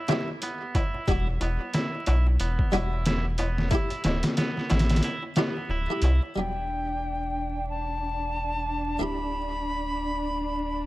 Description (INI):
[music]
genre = trip hop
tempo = 91 BPM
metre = 4/4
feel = swing 58% on 16ths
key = E minor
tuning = A4 = 440 Hz
[part]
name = buff-stop harpsichord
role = accompaniment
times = 0.0-10.9 s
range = F#3 to G4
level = -32 LUFS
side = equal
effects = tremolo, tape echo
[part]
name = twangy electric guitar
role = arpeggios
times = 0.0-6.2 s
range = B3 to E4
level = -34 LUFS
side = right 2 dB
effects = vintage 12-bit sampler grit, tape echo
[part]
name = trip hop sampler-style drum kit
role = drums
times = 0.1-6.2 s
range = hi-hat, kick drum, snare drum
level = -26 LUFS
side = equal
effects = overdrive
[part]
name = darbuka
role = percussion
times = 0.1-6.3 s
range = none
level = -36 LUFS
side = left 1 dB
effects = none
[part]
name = round analog bass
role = bass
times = 1.1-10.9 s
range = D1 to C2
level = -27 LUFS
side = equal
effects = none
[part]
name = silver concert flute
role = melody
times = 6.4-10.9 s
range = G5 to B5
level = -30 LUFS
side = left 1 dB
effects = tape echo
[part]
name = dark studio string section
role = sustained chords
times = 6.4-10.9 s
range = D4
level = -34 LUFS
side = right 1 dB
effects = none
[sound]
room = light reverb, small room ambience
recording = vinyl crackle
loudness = -24 LUFS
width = side -17 dB against mid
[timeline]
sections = 0.0-6.4 A section; 6.4-10.9 B section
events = kick drops out 5.0-6.4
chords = 0.0 Dsus4 (rootless); 1.1 Em9; 3.7 Dsus4; 6.4 Em9; 9.0 D9sus4